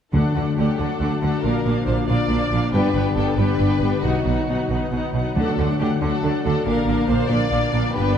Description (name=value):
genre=cinematic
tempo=92 BPM (dotted quarters)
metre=6/8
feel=straight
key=D major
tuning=A4 = 443 Hz
part: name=warm symphonic violin section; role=melody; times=0.1-8.2 s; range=F5 to G5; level=-32 LUFS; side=left 4 dB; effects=none
part: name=rich symphonic violin section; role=second line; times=0.1-8.2 s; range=F#4 to D5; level=-27 LUFS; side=left 2 dB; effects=none
part: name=rich symphonic viola section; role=accompaniment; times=0.1-8.2 s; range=A3 to D#4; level=-26 LUFS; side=right 2 dB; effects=none
part: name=mellow French horn section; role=sustained chords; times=0.1-8.2 s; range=F3 to D#4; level=-27 LUFS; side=left 6 dB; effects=none
part: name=concert harp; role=arpeggios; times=0.1-8.2 s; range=G2 to D5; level=-27 LUFS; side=left 5 dB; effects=none
part: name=clear symphonic cello section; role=bass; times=0.1-8.2 s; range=G2 to D3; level=-25 LUFS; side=right 3 dB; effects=none
part: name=rich symphonic double bass section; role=bass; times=0.1-8.2 s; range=G1 to D2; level=-24 LUFS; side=right 3 dB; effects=none
part: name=timpani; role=percussion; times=0.1-0.7, 5.4-6.0 s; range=D3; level=-26 LUFS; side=equal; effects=none
room=wet concert hall reverb, RT60 2.2 s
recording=dark, warm production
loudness=-18 LUFS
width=side -8 dB against mid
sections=0.1-8.2 A section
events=none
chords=0.1 D; 1.4 Bb; 2.7 G; 4.0 B; 5.4 D; 6.7 Bb